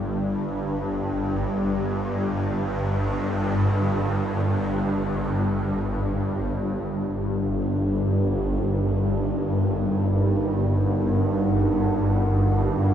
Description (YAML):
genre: dark ambient drone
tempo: free time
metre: none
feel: none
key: unclear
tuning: A4 = 439 Hz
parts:
  - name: swarming drone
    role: drone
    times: 0.0-12.9 s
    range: G1 to G2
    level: -22 LUFS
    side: equal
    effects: built-in reverb, wide subtle chorus
  - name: dark analog pad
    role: sustained chords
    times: 8.6-12.9 s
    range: Eb4 to Gb5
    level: -29 LUFS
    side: right 2 dB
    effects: chorus, phaser
room: moderate plate reverb, RT60 2.9 s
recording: dreamy mix soaked in reverb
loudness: -22 LUFS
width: side -9 dB against mid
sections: 0.0-6.5 A section; 6.5-12.9 B section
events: fade-in on analog synth pad 6.5-12.9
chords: 0.0 N.C.; 6.5 Ebm